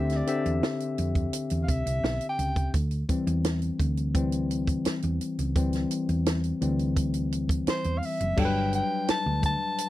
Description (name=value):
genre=lush 1970s-style soul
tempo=85 BPM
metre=4/4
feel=straight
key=unclear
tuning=A4 = 440 Hz
part: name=breathy soprano saxophone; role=melody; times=0.0-2.7, 7.7-9.9 s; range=C5 to A5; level=-30 LUFS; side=left 1 dB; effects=none
part: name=barky tine electric piano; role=accompaniment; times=0.0-9.9 s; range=D3 to E5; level=-29 LUFS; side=left 3 dB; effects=none
part: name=hollow-body short-scale fingered electric bass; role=bass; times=0.0-9.5 s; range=F#1 to F2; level=-29 LUFS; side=right 1 dB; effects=none
part: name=compact cocktail drum kit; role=drums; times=0.1-9.9 s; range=crash cymbal, hi-hat, kick drum, snare drum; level=-29 LUFS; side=right 1 dB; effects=none
room=little or no reverb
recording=dry, close 1970s-style studio recording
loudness=-25 LUFS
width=side -15 dB against mid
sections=0.0-2.7 A section; 2.7-8.4 B section; 8.4-9.9 C section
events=soprano saxophone solo 0.0-2.7; tine electric piano solo 2.7-8.4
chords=0.0 D9sus4; 8.4 Gmaj7